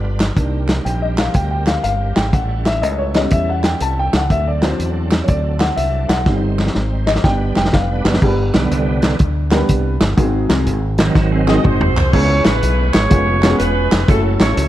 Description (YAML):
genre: uptempo gospel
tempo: 122 BPM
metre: 4/4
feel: swing 66% on 8ths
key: unclear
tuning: A4 = 443 Hz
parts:
  - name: bright tonewheel organ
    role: sustained chords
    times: 0.0-14.7 s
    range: D3 to C5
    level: -24 LUFS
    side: right 3 dB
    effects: fast rotary speaker, overdrive, chorus vibrato
  - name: fingered electric bass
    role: bass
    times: 0.0-14.7 s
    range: E1 to E2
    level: -19 LUFS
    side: equal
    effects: none
  - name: warm soul drum kit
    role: drums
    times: 0.2-14.7 s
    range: crash cymbal, hi-hat, kick drum, snare drum, toms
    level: -17 LUFS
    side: equal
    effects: none
  - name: group handclap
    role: percussion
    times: 0.2-14.5 s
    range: none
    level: -31 LUFS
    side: right 4 dB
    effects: none
  - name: dark upright piano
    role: accompaniment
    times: 0.4-14.7 s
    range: G2 to A5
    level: -20 LUFS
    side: left 1 dB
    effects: none
  - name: clean electric guitar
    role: second line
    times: 11.2-12.1 s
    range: C4 to Eb5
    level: -27 LUFS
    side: right 5 dB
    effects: spring reverb
  - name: mellow saxophone section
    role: melody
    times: 11.5-14.7 s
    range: C#4 to Eb5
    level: -19 LUFS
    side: right 1 dB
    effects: slapback echo
room: light reverb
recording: dark, warm production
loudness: -13 LUFS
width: side -13 dB against mid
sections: 0.0-8.2 A section; 8.2-12.1 B section; 12.1-14.7 C section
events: upright piano solo 0.0-8.2; drum fill 6.3-8.2, 11.2-12.1; tonewheel organ solo 8.2-12.1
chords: 0.4 Cm7; 2.3 A7; 4.3 D7; 6.3 Cm/G; 7.2 G; 10.2 Ab7; 12.1 C#m7; 13.1 C#7/E#; 14.1 F#m7